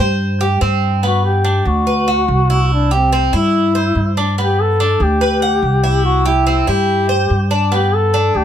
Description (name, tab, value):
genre	latin, Cuban son and guajira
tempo	144 BPM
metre	4/4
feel	straight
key	G major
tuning	A4 = 439 Hz
part	Cuban tres	arpeggios	0.0-8.4 s	B3 to F#5	-18 LUFS	right 1 dB	none
part	upright bass	bass	0.0-8.4 s	C2 to G2	-16 LUFS	equal	none
part	mellow duduk	melody	1.1-8.4 s	C4 to A4	-17 LUFS	left 1 dB	none
room	light reverb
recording	close, detailed microphones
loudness	-12 LUFS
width	side -9 dB against mid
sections	0.0-1.0 A section; 1.0-8.4 B section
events	none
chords	0.0 C5; 1.0 Gmaj7; 2.7 C; 4.4 Gmaj7; 6.0 C; 7.7 G